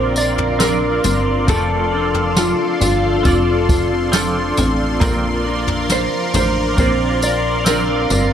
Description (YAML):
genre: dream pop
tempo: 68 BPM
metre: 4/4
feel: straight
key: Bb major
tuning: A4 = 440 Hz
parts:
  - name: mellow electric guitar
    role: melody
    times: 0.0-8.3 s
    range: F4 to D5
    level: -20 LUFS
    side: equal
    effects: tape echo
  - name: semi-hollow electric guitar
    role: accompaniment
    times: 0.0-8.3 s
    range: F3 to D5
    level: -25 LUFS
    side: right 2 dB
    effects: tremolo, ensemble chorus
  - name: lush unison pad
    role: sustained chords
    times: 0.0-8.3 s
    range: A4 to C6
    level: -22 LUFS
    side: left 1 dB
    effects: chorus, phaser
  - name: mellow electric guitar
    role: arpeggios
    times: 0.0-8.3 s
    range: F3 to Bb4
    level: -23 LUFS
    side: left 1 dB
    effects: analog chorus, tape echo
  - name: plucky analog bass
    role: bass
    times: 0.0-8.3 s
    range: F1 to Bb1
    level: -21 LUFS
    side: equal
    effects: none
  - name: jazz brush drum kit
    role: drums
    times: 0.2-8.3 s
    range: kick drum, snare drum, tambourine, toms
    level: -20 LUFS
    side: equal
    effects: none
room: moderate huge ambient reverb, RT60 8.1 s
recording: none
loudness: -14 LUFS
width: side -9 dB against mid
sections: 0.0-8.3 A section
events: none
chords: 0.0 Bbadd9; 1.5 F6; 5.0 Bbadd9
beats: 0.60 | 1.49 2.37 3.25 4.13 | 5.01 5.90 6.78 7.66